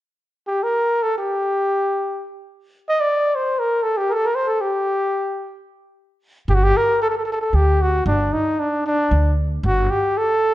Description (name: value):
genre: arabic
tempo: free time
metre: none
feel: none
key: G maqam nahawand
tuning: A4 = 440 Hz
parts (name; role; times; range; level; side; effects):
- breathy trumpet; melody; 0.5-10.5 s; D4 to Eb5; -18 LUFS; equal; none
- upright bass; bass; 6.5-9.9 s; G1 to D2; -18 LUFS; equal; none
room: moderate recital hall reverb, RT60 1.4 s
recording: nothing above 10.3 kHz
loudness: -17 LUFS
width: side -15 dB against mid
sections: 0.2-6.5 A section; 6.5-10.5 B section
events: none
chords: none